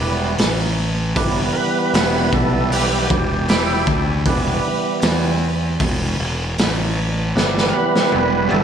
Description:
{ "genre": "blues rock power trio and southern rock", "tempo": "78 BPM", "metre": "4/4", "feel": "straight", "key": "E minor", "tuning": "A4 = 440 Hz", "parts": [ { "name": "overdriven tonewheel organ", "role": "sustained chords", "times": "0.0-8.6 s", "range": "E3 to B4", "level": "-20 LUFS", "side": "right 2 dB", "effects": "lush chorus" }, { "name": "fuzz fingered electric bass", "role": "bass", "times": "0.0-8.6 s", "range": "E1 to E2", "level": "-21 LUFS", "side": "equal", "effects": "overdrive" }, { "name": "raw garage drum kit", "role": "drums", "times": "0.4-8.6 s", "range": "hi-hat, kick drum, snare drum, toms", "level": "-20 LUFS", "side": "equal", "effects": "none" } ], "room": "moderate lush hall reverb, RT60 2.5 s", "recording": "big arena sound, studio reverb", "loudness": "-16 LUFS", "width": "side -8 dB against mid", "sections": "0.0-8.6 A section", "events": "tonewheel organ solo 0.0-8.6; drum fill 7.4-8.6", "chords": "0.0 Em", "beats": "0.38 | 1.16 1.94 2.71 3.48 | 4.26 5.03 5.81 6.58 | 7.35 8.13" }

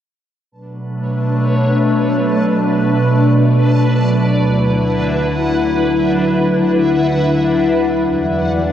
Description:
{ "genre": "hip hop", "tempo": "free time", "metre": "none", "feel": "none", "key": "unclear", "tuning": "A4 = 438 Hz", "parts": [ { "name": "glassy FM pad", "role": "sustained chords", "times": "0.7-8.7 s", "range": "D2 to F#5", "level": "-13 LUFS", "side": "equal", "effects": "ensemble chorus, built-in reverb" }, { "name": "backwards swelling texture", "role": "texture", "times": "1.0-8.7 s", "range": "D4 to A5", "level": "-22 LUFS", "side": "equal", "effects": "built-in reverb" } ], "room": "moderate huge ambient reverb, RT60 7.8 s", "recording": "dark, warm production", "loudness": "-12 LUFS", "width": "side -10 dB against mid", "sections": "0.5-8.7 A section", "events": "none", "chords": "0.5 Bm9; 4.3 D69; 8.0 Em9", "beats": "free time" }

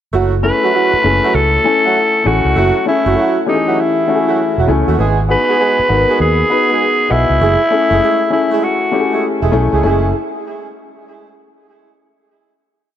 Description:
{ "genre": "R&B", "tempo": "99 BPM", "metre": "4/4", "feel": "swing 64% on 16ths", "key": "F# dorian", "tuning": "A4 = 440 Hz", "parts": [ { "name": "mellow horn section", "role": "stabs", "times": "0.1-10.1 s", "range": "F#3 to G#4", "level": "-20 LUFS", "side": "right 6 dB", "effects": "none" }, { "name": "vintage muted fingered electric bass", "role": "bass", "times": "0.1-10.1 s", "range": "E1 to D#2", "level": "-16 LUFS", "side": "right 1 dB", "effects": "none" }, { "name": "raspy tenor saxophone", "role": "melody", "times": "0.4-9.2 s", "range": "D#4 to B4", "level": "-14 LUFS", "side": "equal", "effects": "none" }, { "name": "warm grand piano", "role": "accompaniment", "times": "0.4-10.1 s", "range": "E3 to G#5", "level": "-17 LUFS", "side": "left 5 dB", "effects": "none" } ], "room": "moderate lush hall reverb, RT60 2.9 s", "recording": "none", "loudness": "-11 LUFS", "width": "side -10 dB against mid", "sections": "0.1-9.8 chorus; 9.8-12.3 final chord", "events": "none", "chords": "0.1 F#m7; 5.0 G#m7; 7.4 F#m9", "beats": "| 0.13 0.74 1.34 1.95 | 2.56 3.16 3.77 4.38 | 4.98 5.59 6.19 6.80 | 7.41 8.01 8.62 9.22 | 9.83" }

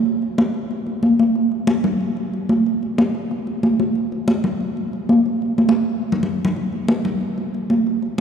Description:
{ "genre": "latin", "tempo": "185 BPM", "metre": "4/4", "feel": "straight", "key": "none", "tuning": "none", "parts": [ { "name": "congas", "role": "percussion", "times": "0.1-8.2 s", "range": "none", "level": "-17 LUFS", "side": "equal", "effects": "none" } ], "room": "wet cathedral reverb, RT60 4.3 s", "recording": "recorded in a church or concert hall", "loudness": "-17 LUFS", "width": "side -7 dB against mid", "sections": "0.0-1.4 A section; 1.4-8.2 B section", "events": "drum fill 5.6-6.6", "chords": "none", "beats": "| 0.06 0.38 0.71 1.03 | 1.36 1.68 2.01 2.33 | 2.65 2.98 3.31 3.63 | 3.96 4.28 4.61 4.93 | 5.26 5.58 5.91 6.23 | 6.56 6.88 7.21 7.54 | 7.86 8.19" }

